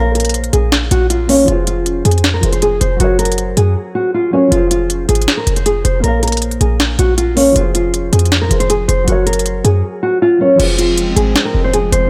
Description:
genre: hip hop, trap.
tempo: 158 BPM.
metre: 4/4.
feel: half-time.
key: F phrygian.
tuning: A4 = 438 Hz.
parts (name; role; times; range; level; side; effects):
nylon-string guitar; melody; 0.0-12.1 s; Db4 to C5; -17 LUFS; equal; low-pass filter, tape echo.
dark concert grand piano; accompaniment; 0.0-12.1 s; F3 to F5; -25 LUFS; equal; low-pass filter.
short 808-style bass; bass; 0.0-12.1 s; F1 to Gb2; -18 LUFS; equal; none.
trap drum kit; drums; 0.2-12.0 s; crash cymbal, hi-hat, snare drum; -20 LUFS; equal; none.
hollow soft pad; sustained chords; 10.6-12.1 s; F3 to C4; -24 LUFS; equal; chorus.
room: light reverb, digital ambience.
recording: none.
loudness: -14 LUFS.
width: mono.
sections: 0.0-10.6 A section; 10.6-12.1 B section.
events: drums muted 3.8-4.5.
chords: 0.0 Bbm; 1.5 Fm; 3.0 Gb; 4.5 Fm; 6.0 Bbm; 7.6 Fm; 9.1 Gb; 10.6 Fm.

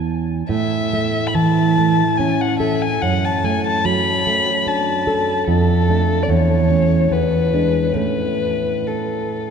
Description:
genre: romantic duo for violin and classical guitar.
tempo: 72 BPM.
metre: 3/4.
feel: uneven beats, rubato.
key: A major.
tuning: A4 = 438 Hz.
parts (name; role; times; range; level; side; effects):
nylon-string guitar; accompaniment; 0.0-9.5 s; E2 to A4; -17 LUFS; right 2 dB; none.
dark violin; melody; 0.5-9.5 s; A4 to B5; -20 LUFS; left 4 dB; none.
room: wet cathedral reverb, RT60 6.0 s.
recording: recorded in a church or concert hall.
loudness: -15 LUFS.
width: side -6 dB against mid.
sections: 0.0-9.5 A section.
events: none.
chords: 0.5 A; 3.0 D/F#; 5.5 Dm/F; 6.3 A/E; 7.1 E7; 8.0 A.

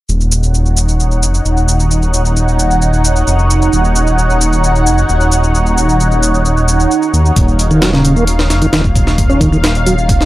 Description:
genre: breakbeat, breaks.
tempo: 132 BPM.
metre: 4/4.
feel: straight.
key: Eb minor.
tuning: A4 = 440 Hz.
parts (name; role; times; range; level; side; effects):
lush unison pad; sustained chords; 0.5-10.3 s; Eb4 to Gb5; -16 LUFS; right 1 dB; chorus, phaser, sidechain pumping.
dark detuned saw bass; bass; 0.1-10.3 s; Eb1 to Eb2; -12 LUFS; equal; none.
shaker; drums; 0.1-10.3 s; none; -20 LUFS; equal; none.
breakbeat sampler-style drum kit; drums; 7.4-10.3 s; hi-hat, kick drum, snare drum; -14 LUFS; equal; none.
tonewheel organ; riff; 7.7-10.3 s; Db3 to Eb4; -14 LUFS; equal; overdrive, chorus vibrato, slow rotary speaker, digital delay.
room: little or no reverb.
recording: none.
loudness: -10 LUFS.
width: side -16 dB against mid.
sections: 0.1-10.3 A section.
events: filter sweep on detuned saw bass 0.1-10.3.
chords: 0.1 Ebm7.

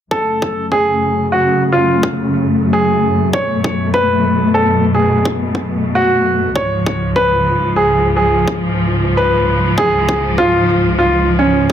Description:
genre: heavy wobble dubstep.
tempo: 149 BPM.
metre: 4/4.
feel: swing 54% on 16ths, half-time.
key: F# harmonic minor.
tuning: A4 = 440 Hz.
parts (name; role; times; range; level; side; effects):
warm grand piano; melody; 0.1-11.7 s; C#4 to C#5; -15 LUFS; right 1 dB; ping-pong delay.
warm symphonic string section; sustained chords; 0.1-11.7 s; C#2 to A3; -16 LUFS; left 1 dB; stereo widening, sidechain pumping, low-pass filter.
electronic kick drum; drums; 0.1-11.7 s; none; -22 LUFS; equal; high-pass filter on kick, high-pass filter on room.
room: moderate digital room reverb, RT60 1.2 s, small room ambience.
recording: none.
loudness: -12 LUFS.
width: side -9 dB against mid.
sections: 0.1-11.7 A section.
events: filter sweep on string section 0.1-11.7.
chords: 0.1 F#m; 6.6 C#.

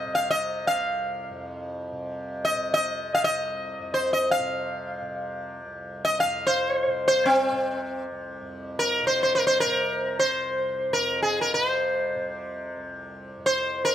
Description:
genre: indian classical, Hindustani.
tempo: free time.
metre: none.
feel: none.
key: unclear.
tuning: A4 = 441 Hz.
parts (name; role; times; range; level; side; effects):
sitar; melody; 0.0-13.9 s; C4 to F5; -23 LUFS; equal; plate reverb.
tanpura; drone; 0.0-13.9 s; C2 to C3; -34 LUFS; equal; none.
room: moderate studio reverb, RT60 0.5 s.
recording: none.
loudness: -23 LUFS.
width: side -11 dB against mid.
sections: 0.0-8.4 A section; 8.4-13.9 A section.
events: none.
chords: none.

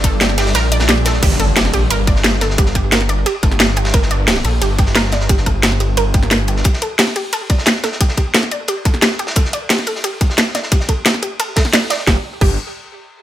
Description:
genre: dark technical drum and bass.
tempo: 177 BPM.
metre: 4/4.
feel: straight.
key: G minor.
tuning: A4 = 440 Hz.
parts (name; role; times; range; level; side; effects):
swarming drone; sustained chords; 0.0-1.2 s; G3 to D5; -26 LUFS; equal; built-in reverb, sidechain pumping.
analog pluck; arpeggios; 0.0-12.6 s; G4 to G5; -22 LUFS; right 2 dB; chorus, sidechain pumping, tape echo.
wide detuned saw bass; bass; 0.0-6.6, 12.1-12.6 s; G1 to Bb1; -17 LUFS; equal; chorus, overdrive.
crunchy breakbeat drum kit; drums; 0.0-12.1 s; hi-hat, ride cymbal, snare drum; -24 LUFS; equal; high-pass filter on cymbals, studio reverb, high-pass filter on hats, high-pass filter on snare, high-pass filter on room.
drum and bass drum kit; drums; 0.0-12.5 s; crash cymbal, hi-hat, snare drum; -15 LUFS; equal; overdrive, studio reverb.
electronic kick drum; drums; 0.0-12.5 s; none; -14 LUFS; equal; overdrive, studio reverb.
impact; sound effects; 1.2-2.6 s; none; -23 LUFS; equal; none.
room: little or no reverb.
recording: none.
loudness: -13 LUFS.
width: side -12 dB against mid.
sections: 0.0-1.2 A section; 1.2-12.1 B section; 12.1-13.2 C section.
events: drop 0.0-1.2; kick drops out 0.5-1.2; impact 1.2-2.6; filter sweep on synth arpeggio sound 1.2-12.1.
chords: 0.0 Gm; 1.2 N.C..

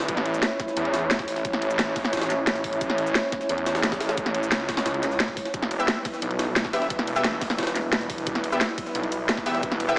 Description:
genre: dark technical drum and bass.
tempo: 176 BPM.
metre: 4/4.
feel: straight.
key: unclear.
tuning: A4 = 440 Hz.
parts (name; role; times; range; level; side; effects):
dark analog pad; sustained chords; 0.0-10.0 s; G3 to C#5; -29 LUFS; equal; chorus, sidechain pumping.
wide detuned saw bass; bass; 0.0-10.0 s; E1 to E2; -29 LUFS; equal; chorus, tube saturation, sidechain pumping.
drum and bass drum kit; drums; 0.0-10.0 s; cabasa, hi-hat, ride cymbal, snare drum; -26 LUFS; equal; overdrive.
jungle sampler-style drum kit; drums; 0.0-9.9 s; hi-hat, snare drum; -32 LUFS; equal; none.
electronic kick drum; drums; 0.1-9.7 s; none; -36 LUFS; equal; overdrive.
orchestra-hit-like synth stab; stabs; 5.8-10.0 s; B3 to E5; -27 LUFS; left 1 dB; built-in reverb, dub echo.
room: moderate digital room reverb, RT60 1.1 s, digital ambience.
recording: heavily compressed radio sound, small speaker sound.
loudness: -22 LUFS.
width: side -24 dB against mid.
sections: 0.0-10.0 A section.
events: none.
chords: 0.1 A; 5.5 Em.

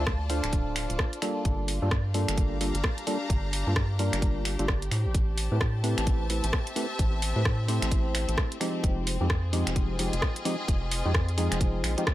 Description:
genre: UK garage, two-step garage.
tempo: 130 BPM.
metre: 4/4.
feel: swing 61% on 16ths.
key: unclear.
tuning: A4 = 437 Hz.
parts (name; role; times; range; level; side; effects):
percussive organ stab; stabs; 0.0-12.0 s; F3 to F5; -32 LUFS; equal; analog chorus, digital delay.
rubbery square bass; bass; 0.0-12.0 s; D1 to A2; -28 LUFS; equal; none.
rich studio string section; texture; 0.0-12.1 s; C4 to Bb5; -36 LUFS; left 3 dB; sidechain pumping.
electronic kick drum; drums; 0.1-12.1 s; none; -27 LUFS; equal; none.
garage drum kit; drums; 0.1-12.1 s; finger snaps, hi-hat, rim click; -32 LUFS; equal; none.
room: little or no reverb.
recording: none.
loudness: -25 LUFS.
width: side -15 dB against mid.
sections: 0.0-12.1 A section.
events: filter sweep on synth stab 0.0-12.1.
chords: 0.0 Dm7; 1.5 Gm7; 4.9 Am7; 8.8 Fm7.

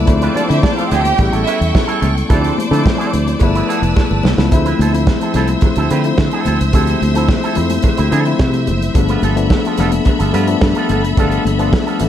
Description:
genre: disco.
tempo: 108 BPM.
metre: 4/4.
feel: straight.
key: D dorian.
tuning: A4 = 436 Hz.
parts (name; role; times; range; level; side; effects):
mellow tine electric piano; accompaniment; 0.0-12.1 s; F3 to G4; -18 LUFS; left 6 dB; overdrive.
bright studio string section; sustained chords; 0.0-12.1 s; A4 to E6; -23 LUFS; equal; none.
fingered electric bass; bass; 0.0-12.1 s; F1 to D3; -16 LUFS; right 1 dB; none.
electric guitar with an envelope filter; accompaniment; 0.1-12.1 s; F3 to B4; -23 LUFS; right 7 dB; none.
warm soul drum kit; drums; 0.1-12.1 s; hi-hat, kick drum, snare drum; -16 LUFS; right 1 dB; none.
congas; percussion; 0.1-12.1 s; none; -26 LUFS; left 4 dB; none.
cowbell; percussion; 0.1-11.9 s; none; -30 LUFS; right 7 dB; none.
warm studio violin section; second line; 0.3-1.7 s; D4 to G5; -19 LUFS; right 3 dB; none.
room: studio reverb.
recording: none.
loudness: -12 LUFS.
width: side -10 dB against mid.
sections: 0.0-4.5 A section; 4.5-12.1 B section.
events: drum fill 4.0-4.5.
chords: 0.1 Dm7; 1.2 A7; 2.3 Dm7; 3.4 G13; 4.5 Dm9; 9.0 G9.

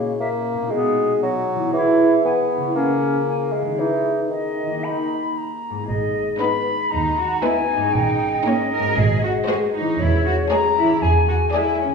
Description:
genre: cinematic, playful, whimsical film cue.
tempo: 117 BPM.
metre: 4/4.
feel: straight.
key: G# minor.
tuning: A4 = 441 Hz.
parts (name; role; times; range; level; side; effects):
clear clarinet; second line; 0.0-5.3 s; A#3 to E4; -23 LUFS; right 1 dB; none.
mellow bassoon; accompaniment; 0.0-5.3 s; C#3 to B3; -20 LUFS; equal; none.
concert harp; arpeggios; 0.0-11.9 s; G#2 to A#4; -26 LUFS; left 3 dB; none.
silver concert flute; second line; 0.2-11.9 s; C#5 to B5; -23 LUFS; left 2 dB; none.
rich studio double bass section; bass; 5.9-11.4 s; G#1 to E2; -23 LUFS; right 2 dB; none.
clear studio violin section; melody; 6.4-11.9 s; B4 to D5; -27 LUFS; left 4 dB; none.
rich studio violin section; second line; 6.4-11.9 s; D#4 to G#4; -30 LUFS; left 1 dB; none.
rich studio viola section; accompaniment; 6.4-11.9 s; G#3 to B3; -28 LUFS; right 2 dB; none.
rich studio cello section; bass; 6.9-11.9 s; C#4 to A#4; -24 LUFS; right 2 dB; none.
room: wet recital hall reverb, RT60 1.6 s.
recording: recorded in a church or concert hall, small room ambience.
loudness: -18 LUFS.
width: side -5 dB against mid.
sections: 0.0-5.9 A section; 5.9-11.9 A section.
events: none.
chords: 0.0 F#7/A#; 0.7 B; 1.7 E; 2.8 C#m; 3.8 G#m/D#; 4.8 D#; 5.9 G#m; 7.9 D#7/G#; 9.0 G#7; 10.0 C#m/E; 11.0 E7.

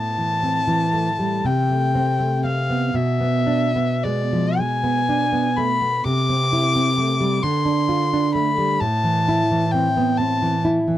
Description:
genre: romantic duo for violin and classical guitar.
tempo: 35-45 BPM (dotted quarters).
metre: 6/8.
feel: rubato.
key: A minor.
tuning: A4 = 440 Hz.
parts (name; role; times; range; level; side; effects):
dark violin; melody; 0.0-10.6 s; D5 to D6; -22 LUFS; left 3 dB; none.
nylon-string guitar; accompaniment; 0.0-11.0 s; A2 to F4; -20 LUFS; right 1 dB; none.
room: little or no reverb.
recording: dry, close 1970s-style studio recording.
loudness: -18 LUFS.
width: side -12 dB against mid.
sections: 0.0-11.0 A section.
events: none.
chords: 0.0 Am; 1.5 Am/C; 2.9 E7/B; 6.1 Am/C; 7.4 Dm7; 8.8 Am.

